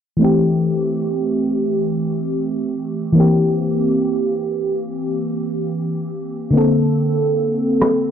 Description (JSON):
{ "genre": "contemporary R&B", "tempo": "71 BPM", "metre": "4/4", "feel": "straight", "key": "unclear", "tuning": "A4 = 439 Hz", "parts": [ { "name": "FM electric piano with soft pad layer", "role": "accompaniment", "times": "0.2-8.1 s", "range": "D3 to A4", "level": "-16 LUFS", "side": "equal", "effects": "chorus, phaser" }, { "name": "electronic rim click", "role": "drums", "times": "7.8-8.0 s", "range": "none", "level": "-21 LUFS", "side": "right 1 dB", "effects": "none" } ], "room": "light reverb", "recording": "low-pass filter", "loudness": "-16 LUFS", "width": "side -8 dB against mid", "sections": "0.2-8.1 A section", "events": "filter sweep 0.2-8.1", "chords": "0.2 Am7; 3.2 C7; 6.5 Bbmaj9" }